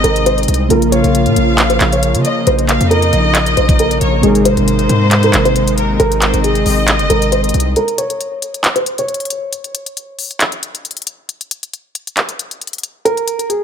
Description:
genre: hip hop, trap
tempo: 136 BPM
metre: 4/4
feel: half-time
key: unclear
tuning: A4 = 437 Hz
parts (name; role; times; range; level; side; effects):
- felt-muted upright piano; melody; 0.0-9.5, 13.1-13.6 s; Ab4 to Db5; -17 LUFS; right 1 dB; low-pass filter, ping-pong delay
- warm studio violin section; second line; 0.0-7.7 s; Bb4 to F5; -19 LUFS; left 2 dB; ping-pong delay
- warbly lo-fi synth keys; accompaniment; 0.0-7.8 s; C3 to Bb4; -17 LUFS; equal; chorus, low-pass filter
- warm analog pad; sustained chords; 0.0-7.7 s; C3 to F4; -22 LUFS; equal; chorus, tremolo
- hard-hitting 808-style bass; bass; 0.0-7.8 s; Gb1 to Db3; -16 LUFS; equal; none
- trap drum kit; drums; 0.0-13.6 s; handclaps, hi-hat, kick drum; -17 LUFS; equal; none
room: light reverb, digital ambience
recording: none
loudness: -12 LUFS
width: side -8 dB against mid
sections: 0.0-7.8 A section; 7.8-13.6 B section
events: break 7.8-13.6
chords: 0.0 Abadd9; 0.7 Bbm; 4.2 Abadd9; 7.8 N.C.

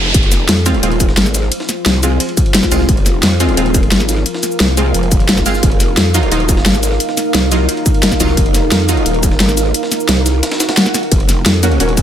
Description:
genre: dark technical drum and bass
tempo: 175 BPM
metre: 4/4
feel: straight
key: F phrygian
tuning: A4 = 440 Hz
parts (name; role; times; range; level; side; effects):
- deep dark ambient pad; sustained chords; 0.0-12.0 s; Ab3 to F5; -20 LUFS; right 1 dB; chorus, built-in reverb, sidechain pumping
- growl bass; bass; 0.0-12.0 s; Eb1 to F2; -15 LUFS; equal; chorus, tube saturation
- riser and swell; sound effects; 0.0-0.1, 10.5-11.1 s; none; -21 LUFS; right 2 dB; none
- breakbeat sampler-style drum kit; drums; 0.1-12.0 s; hi-hat, ride cymbal, snare drum; -24 LUFS; right 1 dB; high-pass filter on cymbals, low-pass filter on cymbals, high-pass filter on snare, low-pass filter on snare, high-pass filter on hats, low-pass filter on hats
- dubstep drum kit; drums; 0.1-12.0 s; cabasa, hi-hat, snare drum; -15 LUFS; left 1 dB; low-pass filter on perc, low-pass filter on hats, low-pass filter on snare
- electronic kick drum; drums; 0.1-12.0 s; none; -14 LUFS; equal; distortion
- orchestra-hit-like synth stab; stabs; 0.7-9.0, 11.6-11.9 s; Gb3 to Gb4; -20 LUFS; right 2 dB; built-in reverb, digital delay
room: light reverb, digital ambience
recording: none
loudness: -11 LUFS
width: side -10 dB against mid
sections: 0.1-12.0 A section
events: drop 0.1-12.0; swell 10.5-11.1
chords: 0.1 Fm; 5.6 Ebmadd9; 11.1 Gb

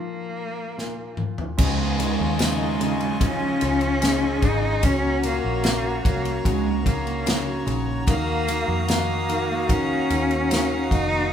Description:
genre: pop ballad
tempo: 74 BPM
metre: 4/4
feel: straight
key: Db major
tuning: A4 = 440 Hz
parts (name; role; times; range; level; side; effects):
- rich cello; melody; 0.0-11.3 s; Ab3 to Eb4; -25 LUFS; right 1 dB; none
- clear upright piano; accompaniment; 0.0-11.3 s; Bb2 to Db4; -30 LUFS; left 2 dB; none
- natural country drum kit; drums; 0.8-11.1 s; crash cymbal, kick drum, ride cymbal, snare drum, toms; -25 LUFS; equal; none
- mellow French horn section; second line; 1.6-11.3 s; Eb4 to Ab4; -31 LUFS; left 4 dB; none
- accordion; sustained chords; 1.6-11.3 s; F4 to Eb6; -30 LUFS; equal; light tremolo tuning
- fingerpicked plugged-in steel-string acoustic guitar; arpeggios; 1.6-11.3 s; Db3 to Gb4; -34 LUFS; right 4 dB; none
- vintage muted fingered electric bass; bass; 1.6-11.3 s; F1 to F2; -28 LUFS; equal; none
- tambourine; percussion; 1.6-11.1 s; none; -42 LUFS; left 5 dB; none
- downlifter; sound effects; 1.6-8.1 s; none; -34 LUFS; equal; none
room: moderate large studio reverb, RT60 1.2 s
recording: band playing live in one room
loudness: -20 LUFS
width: side -9 dB against mid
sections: 0.0-1.6 A section; 1.6-11.3 B section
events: drum fill 0.8-1.6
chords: 0.0 Bb5; 1.6 Dbadd9; 4.8 Gb; 8.1 Ebmadd9

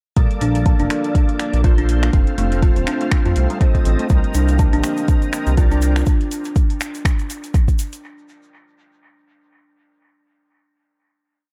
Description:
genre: afro house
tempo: 122 BPM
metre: 4/4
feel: swing 56% on 16ths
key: unclear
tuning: A4 = 440 Hz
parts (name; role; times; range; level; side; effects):
- dark analog pad; sustained chords; 0.6-6.0 s; A3 to D5; -32 LUFS; equal; chorus, sidechain pumping
- buzzing kalimba; arpeggios; 0.2-6.1 s; D3 to F4; -27 LUFS; equal; sidechain pumping, dub echo
- overdriven tonewheel organ; stabs; 0.2-6.0 s; Bb3 to F5; -30 LUFS; equal; chorus vibrato, slow rotary speaker, sidechain pumping, dub echo
- smooth synth bass; bass; 0.2-6.0 s; Eb1 to F2; -20 LUFS; equal; tube saturation, sidechain pumping
- deep house drum kit; drums; 0.2-8.0 s; finger snaps, hi-hat; -32 LUFS; equal; dub echo
- electronic kick drum; drums; 0.2-7.8 s; none; -18 LUFS; equal; none
- egg shaker; percussion; 4.1-8.0 s; none; -39 LUFS; equal; none
room: digital ambience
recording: echo-heavy mix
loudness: -17 LUFS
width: mono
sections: 0.2-8.0 drop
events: drop 0.2-8.0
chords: 0.2 Bbmaj7; 2.1 F; 4.1 Cm7; 6.1 N.C.

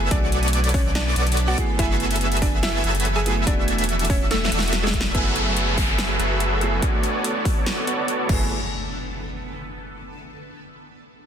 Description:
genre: future bass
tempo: 143 BPM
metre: 4/4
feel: half-time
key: F# minor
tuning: A4 = 443 Hz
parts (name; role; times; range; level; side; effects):
- dark grand piano; accompaniment; 0.0-8.5 s; A3 to G#5; -31 LUFS; right 3 dB; sidechain pumping, ping-pong delay
- shimmering ambient pad; sustained chords; 0.0-8.5 s; D3 to G#5; -32 LUFS; right 1 dB; chorus, built-in reverb, phaser, sidechain pumping
- airy dreamy lead; arpeggios; 0.0-5.1 s; D5 to E5; -30 LUFS; equal; chorus, sidechain pumping
- supersaw chords; riff; 0.0-8.4 s; E3 to E5; -26 LUFS; right 1 dB; sidechain pumping, low-pass filter, ping-pong delay
- saturated sub bass; bass; 0.0-8.5 s; E1 to B1; -24 LUFS; equal; sidechain pumping
- mallet-like synth pluck; melody; 0.1-5.0 s; G#3 to G#5; -30 LUFS; equal; chorus, sidechain pumping, ping-pong delay
- big-room dance drum kit; drums; 0.1-8.4 s; crash cymbal, hi-hat, snare drum; -28 LUFS; equal; none
- electronic kick drum; drums; 0.1-8.4 s; none; -23 LUFS; equal; none
- downlifter and impact; sound effects; 5.1-10.0 s; none; -29 LUFS; equal; none
room: light reverb, digital ambience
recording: dense, heavily limited modern master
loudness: -19 LUFS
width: side -8 dB against mid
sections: 0.0-5.1 A section; 5.1-8.5 B section; 8.5-10.2 C section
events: drop 0.0-5.1; drum fill 4.3-5.1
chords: 0.1 Bm7; 1.6 F#m11; 3.5 E9sus4; 5.1 F#m11; 6.8 Bm7; 8.3 F#m11; 8.5 N.C.

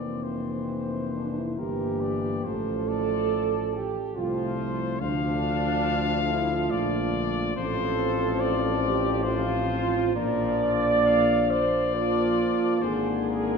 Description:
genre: classical, hymn-like piece for brass band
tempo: 69 BPM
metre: 3/4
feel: uneven beats, rubato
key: Bb major from 7.6 s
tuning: A4 = 440 Hz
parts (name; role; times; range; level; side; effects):
- warm cornet; melody; 0.0-13.6 s; Bb4 to F5; -32 LUFS; left 7 dB; none
- mellow French horn section; second line; 0.0-13.6 s; C4 to D5; -27 LUFS; right 4 dB; none
- bright trombone; accompaniment; 0.0-13.6 s; D3 to F3; -34 LUFS; equal; none
- dark euphonium; accompaniment; 0.0-13.6 s; A3 to C4; -32 LUFS; left 3 dB; none
- dark tuba; bass; 0.0-13.6 s; F1 to D2; -30 LUFS; left 1 dB; none
room: wet concert hall reverb, RT60 2.4 s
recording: heard from further back in the room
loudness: -23 LUFS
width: side -5 dB against mid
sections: 0.0-13.6 A section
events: none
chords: 0.0 C7/F; 2.5 F/A; 5.0 Dm; 7.6 F/A; 10.2 Bb; 12.8 Bb7/Ab

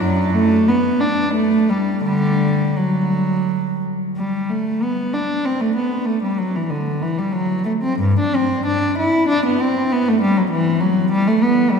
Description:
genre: classical, baroque-style suite movement for unaccompanied cello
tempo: 83-101 BPM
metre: 3/4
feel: rubato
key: G major from 4.2 s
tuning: A4 = 440 Hz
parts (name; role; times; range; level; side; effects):
- warm cello; solo; 0.0-11.8 s; F#2 to E4; -16 LUFS; equal; none
room: wet cathedral reverb, RT60 5.3 s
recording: heard from further back in the room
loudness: -16 LUFS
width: side -6 dB against mid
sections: 0.0-4.2 A section; 4.2-11.8 A section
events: none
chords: none

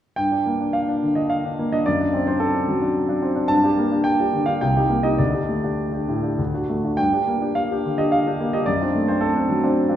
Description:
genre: classical, romantic character piece for solo piano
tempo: 98-112 BPM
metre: 3/4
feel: rubato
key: G minor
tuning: A4 = 443 Hz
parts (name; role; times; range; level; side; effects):
- warm concert grand piano; solo; 0.2-10.0 s; C2 to A5; -18 LUFS; equal; none
room: wet recital hall reverb, RT60 1.6 s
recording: heard from further back in the room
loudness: -19 LUFS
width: side -11 dB against mid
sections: 0.2-10.0 A section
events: none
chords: 0.2 Gm; 1.9 D7/F#; 3.5 Gm; 4.6 Cm7; 5.2 Dsus4; 6.4 D; 7.0 Gm; 8.7 D7/F#

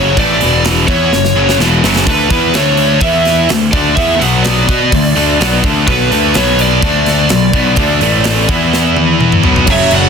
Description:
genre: heavy metal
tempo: 126 BPM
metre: 4/4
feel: straight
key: unclear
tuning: A4 = 441 Hz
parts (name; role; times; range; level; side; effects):
- lead guitar through a small cranked amp; melody; 0.0-10.1 s; B4 to F#5; -15 LUFS; equal; overdrive
- distorted electric guitar; riff; 0.0-10.1 s; E2 to B4; -16 LUFS; left 12 dB; overdrive
- heavy high-gain guitar; riff; 0.0-10.1 s; E2 to B4; -15 LUFS; right 13 dB; distortion
- fuzz picked electric bass; bass; 0.0-10.1 s; E1 to B2; -16 LUFS; equal; overdrive
- tight metal drum kit; drums; 0.2-10.0 s; crash cymbal, hi-hat, kick drum, snare drum, toms; -16 LUFS; equal; none
- high-gain lead guitar; second line; 9.7-10.1 s; C#5 to D5; -18 LUFS; right 5 dB; distortion
- tight distorted guitar; riff; 9.7-10.1 s; F#2 to F#3; -16 LUFS; right 1 dB; distortion
room: little or no reverb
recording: dense, heavily limited modern master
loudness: -9 LUFS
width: side -6 dB against mid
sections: 0.0-9.7 A section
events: drum fill 1.1-2.1, 8.7-9.7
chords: 0.4 E5; 0.9 F#5; 2.1 D5; 3.0 E5; 3.5 D5; 4.2 B5; 6.8 D5; 7.3 B5; 8.0 A5; 8.5 E5; 9.4 B5

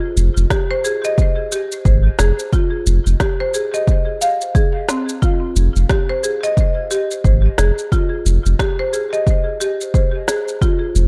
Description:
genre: organic downtempo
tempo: 89 BPM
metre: 4/4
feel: swing 59% on 16ths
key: F minor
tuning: A4 = 440 Hz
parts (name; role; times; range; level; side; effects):
- marimba with medium hard mallets; arpeggios; 0.0-11.1 s; C4 to F5; -22 LUFS; equal; dub echo
- warm sub bass; bass; 0.2-11.1 s; F1 to Ab1; -16 LUFS; equal; sidechain pumping
- electronic shaker and snare drum; drums; 0.2-11.1 s; none; -26 LUFS; equal; overdrive
- electronic kick drum; drums; 0.5-10.8 s; none; -19 LUFS; equal; none
room: light reverb, digital ambience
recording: echo-heavy mix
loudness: -17 LUFS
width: mono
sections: 0.0-11.1 A section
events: none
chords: 0.0 Fm7

